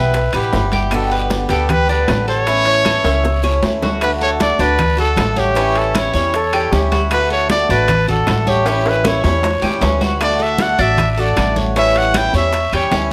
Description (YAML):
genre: latin, Cuban son and guajira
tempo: 155 BPM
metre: 4/4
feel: straight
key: D major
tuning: A4 = 440 Hz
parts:
  - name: clear trumpet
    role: melody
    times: 0.0-13.1 s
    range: G4 to G5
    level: -20 LUFS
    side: equal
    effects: none
  - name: picked swing-style acoustic guitar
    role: accompaniment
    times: 0.0-13.1 s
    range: B2 to G4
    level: -24 LUFS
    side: equal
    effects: none
  - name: Cuban tres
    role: arpeggios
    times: 0.0-13.1 s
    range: C#4 to E5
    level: -23 LUFS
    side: equal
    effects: none
  - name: upright bass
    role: bass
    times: 0.0-13.1 s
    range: G1 to E2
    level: -22 LUFS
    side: equal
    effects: none
  - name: bongos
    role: percussion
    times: 0.1-13.1 s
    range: none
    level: -30 LUFS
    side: equal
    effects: none
  - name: congas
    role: percussion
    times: 0.1-13.1 s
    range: none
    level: -26 LUFS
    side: equal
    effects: none
  - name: guiro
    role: percussion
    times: 0.1-13.1 s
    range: none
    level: -34 LUFS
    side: equal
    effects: none
  - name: timbales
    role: percussion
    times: 0.1-12.9 s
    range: none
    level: -27 LUFS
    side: equal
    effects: none
  - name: claves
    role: percussion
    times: 0.3-12.9 s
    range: none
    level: -34 LUFS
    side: equal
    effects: none
  - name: breathy bright concert flute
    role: second line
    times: 6.3-7.0 s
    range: G4 to A4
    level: -23 LUFS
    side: equal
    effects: none
room: moderate large studio reverb, RT60 1.1 s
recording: none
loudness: -16 LUFS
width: mono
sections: 0.0-4.0 A section; 4.0-13.1 B section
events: drum fill 3.0-4.0, 8.7-10.2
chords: 0.0 Em; 0.9 G; 2.5 A; 4.0 D; 5.6 A7; 7.1 D; 8.7 A7; 10.2 D; 11.8 A7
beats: 0.14 0.53 | 0.92 1.30 1.69 2.08 | 2.47 2.85 3.24 3.63 | 4.02 4.40 4.79 5.18 | 5.56 5.95 6.34 6.73 | 7.11 7.50 7.89 8.27 | 8.66 9.05 9.44 9.82 | 10.21 10.60 10.98 11.37 | 11.76 12.14 12.53 12.92